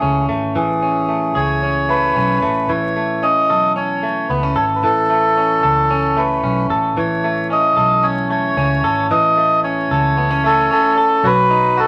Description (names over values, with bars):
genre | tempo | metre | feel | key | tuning
indie pop | 112 BPM | 4/4 | straight | unclear | A4 = 444 Hz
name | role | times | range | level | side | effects
melodica | melody | 0.0-11.9 s | G#4 to D#5 | -18 LUFS | equal | none
direct-recorded clean electric guitar | arpeggios | 0.0-11.9 s | E3 to A4 | -21 LUFS | equal | none
vintage muted fingered electric bass | bass | 0.0-11.9 s | G#1 to C#2 | -26 LUFS | equal | none
room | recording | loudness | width
moderate studio reverb, RT60 0.6 s | vinyl crackle | -16 LUFS | mono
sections
0.0-2.7 A section; 2.7-11.2 B section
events
none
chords
0.0 Amaj7; 11.2 B7